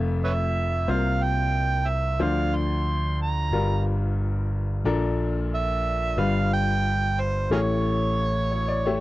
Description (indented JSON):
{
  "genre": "acoustic folk-pop ballad",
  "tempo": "91 BPM",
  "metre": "4/4",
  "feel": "straight",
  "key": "unclear",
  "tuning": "A4 = 441 Hz",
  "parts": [
    { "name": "clear upright piano", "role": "accompaniment", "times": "0.0-9.0 s", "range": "F1 to E5", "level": "-27 LUFS", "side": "left 4 dB", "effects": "none" },
    { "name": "fingered electric bass", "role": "bass", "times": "0.0-9.0 s", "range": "F1 to D2", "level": "-25 LUFS", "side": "equal", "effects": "none" },
    { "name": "overdriven harmonica", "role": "melody", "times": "0.2-9.0 s", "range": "G#4 to C6", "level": "-27 LUFS", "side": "right 3 dB", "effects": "none" }
  ],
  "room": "little or no reverb",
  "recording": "dry, close 1970s-style studio recording",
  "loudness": "-22 LUFS",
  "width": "side -17 dB against mid",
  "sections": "0.0-9.0 A section",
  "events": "none",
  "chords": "0.0 Fmaj7; 0.9 C7sus4; 2.2 Dm7; 3.5 Gm7; 4.9 Bbmaj7; 6.2 G7; 7.5 A7",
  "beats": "0.22 0.88 1.55 | 2.21 2.87 3.53 4.19 | 4.86 5.52 6.18 6.84 | 7.50 8.16 8.83"
}